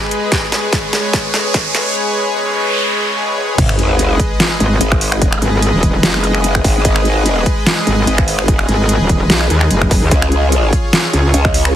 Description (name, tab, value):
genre	heavy wobble dubstep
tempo	147 BPM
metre	4/4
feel	swing 54% on 16ths, half-time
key	G# dorian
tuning	A4 = 440 Hz
part	supersaw pad	sustained chords	0.0-11.8 s	G#3 to D#5	-18 LUFS	left 1 dB	sidechain pumping
part	riser, noise sweep and sub drop	sound effects	0.0-5.2 s	none	-21 LUFS	right 1 dB	none
part	dubstep drum kit	drums	0.1-11.7 s	crash cymbal, finger snaps, hi-hat, snare drum, toms	-17 LUFS	equal	overdrive, high-pass filter on hats, high-pass filter on snare, high-pass filter on toms, high-pass filter on cymbals, high-pass filter on room
part	electronic kick drum	drums	0.3-11.5 s	none	-16 LUFS	equal	overdrive
part	growl bass	bass	3.6-11.8 s	F#1 to C#2	-14 LUFS	equal	chorus, overdrive
part	metallic wobble bass	bass	4.6-11.3 s	D#1 to D#2	-13 LUFS	equal	distortion, chorus, overdrive
room	light reverb, digital ambience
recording	heavily compressed radio sound, high-pass filter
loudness	-11 LUFS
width	side -11 dB against mid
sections	0.0-3.6 A section; 3.6-11.8 B section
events	build-up 0.0-3.6; drum fill 0.0-2.0, 3.4; riser 0.0-2.0; noise sweep 2.0-3.6; drop 3.6-11.8; impact 3.6-5.2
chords	0.0 G#m; 10.1 C#